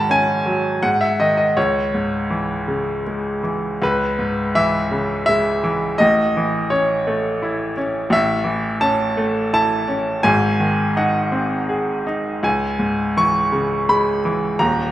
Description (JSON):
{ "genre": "classical, lyrical solo piano", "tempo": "83 BPM", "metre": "3/4", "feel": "rubato", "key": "C# minor", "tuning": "A4 = 440 Hz", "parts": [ { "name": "bright grand piano", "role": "solo", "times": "0.0-14.9 s", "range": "D#1 to C#6", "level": "-17 LUFS", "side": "equal", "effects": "none" } ], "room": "moderate recital hall reverb, RT60 1.5 s", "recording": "recorded in a church or concert hall", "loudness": "-17 LUFS", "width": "side -13 dB against mid", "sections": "0.0-3.8 A section; 3.8-14.9 A section", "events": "none", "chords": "0.0 G#7sus4; 0.8 G#5; 1.6 C#m; 6.0 A; 10.2 G#; 12.5 C#m" }